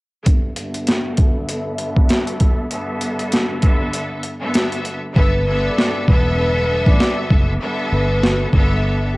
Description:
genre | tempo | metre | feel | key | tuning
hip hop, boom-bap hip-hop | 98 BPM | 4/4 | swing 57% on 16ths | G major | A4 = 438 Hz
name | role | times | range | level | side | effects
bright studio string section | accompaniment | 0.2-9.1 s | G2 to E5 | -22 LUFS | equal | high-pass filter, low-pass filter, cassette tape
boom bap sampler-style drum kit | drums | 0.3-8.7 s | hi-hat, kick drum, snare drum | -16 LUFS | equal | overdrive, cassette tape
vibraphone with soft mallets | melody | 5.2-9.2 s | G4 to D6 | -23 LUFS | equal | high-pass filter, low-pass filter, cassette tape, analog delay
fingered electric bass | bass | 5.2-9.2 s | E1 to A1 | -19 LUFS | equal | none
room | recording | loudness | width
light reverb, digital ambience | home recording on cassette | -15 LUFS | side -22 dB against mid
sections
0.3-5.2 A section; 5.2-9.2 B section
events
filter sweep on string section 0.3-5.2; break 3.9-5.2; hi-hats muted 5.2-9.2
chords
0.3 G6

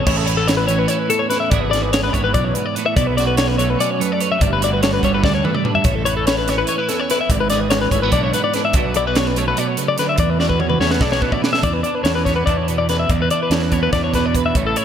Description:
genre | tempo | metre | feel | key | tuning
math rock and midwest emo | 290 BPM (eighths) | 7/8 | straight | unclear | A4 = 441 Hz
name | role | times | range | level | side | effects
twelve-string electric guitar | accompaniment | 0.0-14.8 s | E2 to B4 | -22 LUFS | right 8 dB | ensemble chorus
twelve-string electric guitar | arpeggios | 0.0-14.8 s | A4 to E5 | -19 LUFS | left 5 dB | none
fuzz fingered electric bass | bass | 0.0-14.7 s | G1 to E2 | -22 LUFS | equal | overdrive
crisp fusion drum kit | drums | 0.1-14.8 s | crash cymbal, hi-hat, kick drum, snare drum, toms | -21 LUFS | right 1 dB | none
room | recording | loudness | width
moderate lush hall reverb, RT60 2.0 s, studio reverb | bright 1980s-style digital production | -15 LUFS | side -9 dB against mid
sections
0.1-11.6 A section; 11.6-14.8 B section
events
drum fill 5.2-5.9, 10.4-11.6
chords
0.0 Amaj9; 1.5 E7/G#; 3.0 Bm9; 4.4 Gmaj9; 5.9 Aadd9; 7.3 E7/G#; 8.7 Bm9; 11.6 E5

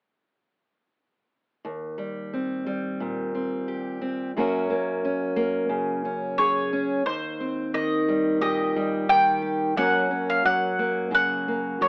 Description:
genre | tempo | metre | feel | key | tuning
acoustic folk duo or small band | 88 BPM | 4/4 | straight | unclear | A4 = 440 Hz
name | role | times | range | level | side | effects
fingerpicked steel-string acoustic guitar | accompaniment | 1.6-11.9 s | Eb2 to Ab4 | -28 LUFS | equal | none
mandolin | melody | 6.4-11.9 s | C5 to G5 | -26 LUFS | equal | none
room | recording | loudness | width
moderate studio reverb, RT60 0.6 s | AM radio sound | -25 LUFS | mono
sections
1.6-7.1 A section; 7.1-11.9 B section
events
none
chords
1.6 Eb6; 4.3 Gb; 7.1 Eb6; 9.8 Gb

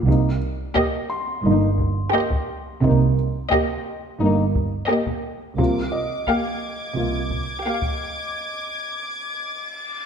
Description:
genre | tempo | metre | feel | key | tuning
cinematic, suspense film score | 87 BPM | 4/4 | straight | C minor | A4 = 440 Hz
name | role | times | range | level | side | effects
mellow French horn section | sustained chords | 0.0-7.2 s | Bb3 to F4 | -25 LUFS | left 3 dB | none
felt-muted upright piano | texture | 0.0-10.1 s | D5 to D6 | -34 LUFS | equal | none
dark chamber double bass section | bass | 0.1-7.5 s | G1 to C2 | -24 LUFS | right 3 dB | none
dark studio cello section | bass | 0.1-7.5 s | G2 to C3 | -23 LUFS | right 4 dB | none
taiko ensemble | drums | 0.1-8.3 s | none | -28 LUFS | left 1 dB | none
rich studio violin section | melody | 0.8-8.2 s | Eb5 to F5 | -27 LUFS | left 2 dB | none
dark chamber violin section | second line | 0.8-8.2 s | G4 | -26 LUFS | right 1 dB | none
dark studio viola section | accompaniment | 0.8-8.2 s | Bb3 | -28 LUFS | equal | none
warm studio violin section | texture | 5.6-10.1 s | D6 to Ab6 | -29 LUFS | left 2 dB | none
reverse cymbal | sound effects | 9.4-10.1 s | none | -47 LUFS | left 1 dB | none
room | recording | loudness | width
moderate scoring stage reverb, RT60 1.7 s | none | -20 LUFS | side -7 dB against mid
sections
0.0-10.1 A section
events
break 8.3-10.1; reverse cymbal 9.4-10.1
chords
0.1 Cm7; 5.6 Gm7/C

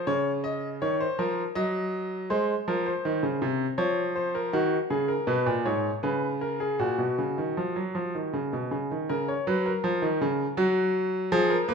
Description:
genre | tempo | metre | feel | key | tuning
classical, baroque-style two-part invention for grand piano | 81 BPM | 3/4 | straight | F# major | A4 = 443 Hz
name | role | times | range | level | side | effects
bright grand piano | solo | 0.0-11.7 s | G#2 to D#5 | -25 LUFS | equal | none
room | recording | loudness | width
moderate recital hall reverb, RT60 1.5 s | minimal, uncompressed stereo recording | -25 LUFS | side -5 dB against mid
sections
0.0-9.1 A section; 9.1-11.7 B section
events
none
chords
0.1 A#m/C#; 1.6 D#m/F#; 2.3 G#; 3.8 A#m/E#; 4.5 D#m; 5.3 G#m; 6.0 C#5; 6.8 F#5; 9.1 F#/C#; 10.6 N.C.

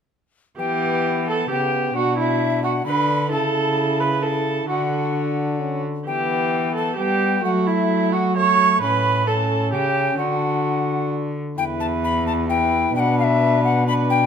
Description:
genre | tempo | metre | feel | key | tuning
classical, renaissance-style consort dance | 131 BPM | 3/4 | straight | E dorian | A4 = 440 Hz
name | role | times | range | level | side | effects
alto recorder | melody | 0.6-14.3 s | E5 to C#6 | -24 LUFS | left 6 dB | none
rich viola | second line | 0.6-14.3 s | E4 to C#5 | -22 LUFS | right 5 dB | none
clear trombone | accompaniment | 0.6-14.3 s | A3 to E4 | -26 LUFS | left 3 dB | none
rich cello | bass | 0.6-14.3 s | E2 to G3 | -24 LUFS | equal | none
room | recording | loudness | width
moderate large studio reverb, RT60 1.4 s | none | -18 LUFS | side -7 dB against mid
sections
0.6-11.6 A section; 11.6-14.3 A section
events
none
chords
0.6 Em; 2.0 Bm; 3.3 A/C#; 4.7 D; 6.1 Em; 7.4 F#m; 8.8 A; 10.2 D; 11.6 Em; 13.0 Bm

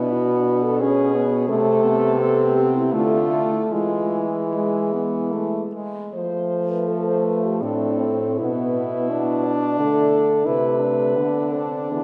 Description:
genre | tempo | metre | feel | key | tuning
classical, lyrical piece for horn quartet | 72-90 BPM | 3/4 | rubato | unclear | A4 = 439 Hz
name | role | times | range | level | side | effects
dark French horn | melody | 0.0-12.0 s | E4 to D5 | -25 LUFS | equal | none
mellow French horn | second line | 0.0-12.0 s | G#3 to D4 | -30 LUFS | equal | none
warm French horn | accompaniment | 0.0-12.0 s | G#3 to E4 | -26 LUFS | equal | none
clear French horn | bass | 0.0-12.0 s | A2 to F3 | -28 LUFS | equal | none
room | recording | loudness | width
wet church reverb, RT60 2.9 s | heard from further back in the room | -21 LUFS | mono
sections
0.0-12.0 A section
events
none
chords
0.0 G#dim/B; 1.5 Am/C; 2.9 Dmadd9; 3.7 E; 6.1 F; 8.4 Bm7; 10.5 Am/C; 11.2 Bm7/D

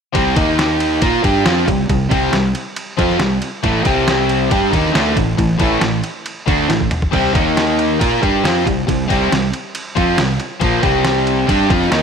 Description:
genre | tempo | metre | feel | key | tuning
hard rock | 138 BPM | 4/4 | straight | C dorian | A4 = 441 Hz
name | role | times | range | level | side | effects
crunchy overdriven guitar | riff | 0.1-12.0 s | A2 to Bb4 | -18 LUFS | left 11 dB | analog chorus
crunchy overdriven guitar | riff | 0.1-12.0 s | A2 to Bb4 | -18 LUFS | right 11 dB | spring reverb
lo-fi sampler-style drum kit | drums | 0.1-12.0 s | crash cymbal, kick drum, ride cymbal, snare drum, toms | -20 LUFS | equal | overdrive
fuzz fingered electric bass | bass | 0.2-12.0 s | A1 to Bb2 | -22 LUFS | left 1 dB | overdrive
room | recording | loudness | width
moderate plate reverb, RT60 2.0 s | bright 1980s-style digital production | -13 LUFS | side -6 dB against mid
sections
0.1-12.0 A section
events
drum fill 6.7-7.1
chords
0.1 C5; 0.4 Eb5; 1.0 C5; 3.6 A5; 3.9 C5; 4.5 A5; 7.1 C5; 7.4 Eb5; 8.0 C5; 10.6 Bb5; 10.8 C5; 11.5 Bb5

